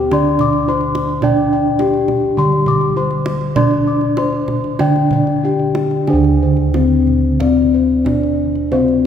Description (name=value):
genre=Javanese gamelan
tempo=91-107 BPM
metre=4/4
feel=straight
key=unclear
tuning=A4 = 440 Hz
part: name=gamelan-type bronze metallophone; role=melody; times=0.0-9.1 s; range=C4-25c to D5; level=-17 LUFS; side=left 4 dB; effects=none
part: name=gamelan-type bronze metallophone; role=accompaniment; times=0.0-9.1 s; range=C3-25c to D4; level=-20 LUFS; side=right 3 dB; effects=none
part: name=gamelan-type bossed gongs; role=bass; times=0.0-9.1 s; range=D2 to D5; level=-18 LUFS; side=equal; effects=none
part: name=gamelan-type bossed gongs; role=arpeggios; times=0.1-9.0 s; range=C5-25c to D6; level=-22 LUFS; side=left 3 dB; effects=none
part: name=kendang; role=percussion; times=0.1-9.0 s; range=none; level=-23 LUFS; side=right 2 dB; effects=none
room=wet church reverb, RT60 3.3 s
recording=recorded in a church or concert hall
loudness=-13 LUFS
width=side -8 dB against mid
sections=0.0-6.1 A section; 6.1-9.1 B section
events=none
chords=none